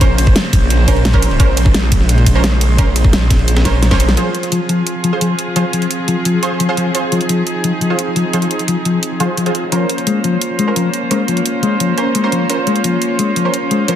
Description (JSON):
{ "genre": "dark technical drum and bass", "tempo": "173 BPM", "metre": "4/4", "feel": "straight", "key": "F minor", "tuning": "A4 = 445 Hz", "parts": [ { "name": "warm studio string section", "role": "sustained chords", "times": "0.0-14.0 s", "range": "Db3 to C5", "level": "-20 LUFS", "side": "right 1 dB", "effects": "sidechain pumping" }, { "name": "orchestra-hit-like synth stab", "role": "stabs", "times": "0.0-13.9 s", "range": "Db4 to C5", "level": "-21 LUFS", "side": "right 3 dB", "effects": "built-in reverb, tape echo" }, { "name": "snarling distorted saw bass", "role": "bass", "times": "0.0-4.2 s", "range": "Bb1", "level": "-13 LUFS", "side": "equal", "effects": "distortion, overdrive, sidechain pumping" }, { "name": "breakbeat sampler-style drum kit", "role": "drums", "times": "0.0-4.2 s", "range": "ride cymbal, snare drum", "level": "-27 LUFS", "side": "right 1 dB", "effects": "none" }, { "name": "dubstep drum kit", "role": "drums", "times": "0.0-14.0 s", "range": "hi-hat, ride cymbal, rim click, snare drum", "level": "-19 LUFS", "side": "equal", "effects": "none" }, { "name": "electronic kick drum", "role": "drums", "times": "0.0-4.0 s", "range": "none", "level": "-13 LUFS", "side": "equal", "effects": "none" }, { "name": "mellow electric guitar", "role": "arpeggios", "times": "4.2-14.0 s", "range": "F3 to Ab3", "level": "-17 LUFS", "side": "left 4 dB", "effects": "sidechain pumping, low-pass filter, tape echo" } ], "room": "light reverb, digital ambience", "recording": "dense, heavily limited modern master", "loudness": "-12 LUFS", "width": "side -10 dB against mid", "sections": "0.0-4.2 A section; 4.2-14.0 B section", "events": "drop 0.0-4.2; drum fill 3.7-4.2; band accent 4.1; filter sweep on clean electric guitar 4.2-14.0", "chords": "0.0 Bbmadd9; 4.2 Fm; 9.7 Bbmadd9", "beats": "| 0.01 0.36 0.70 1.05 | 1.40 1.75 2.09 2.44 | 2.79 3.13 3.48 3.83 | 4.17 4.52 4.87 5.21 | 5.56 5.91 6.25 6.60 | 6.95 7.29 7.64 7.99 | 8.33 8.68 9.03 9.38 | 9.72 10.07 10.41 10.76 | 11.11 11.46 11.80 12.15 | 12.50 12.84 13.19 13.54 | 13.88" }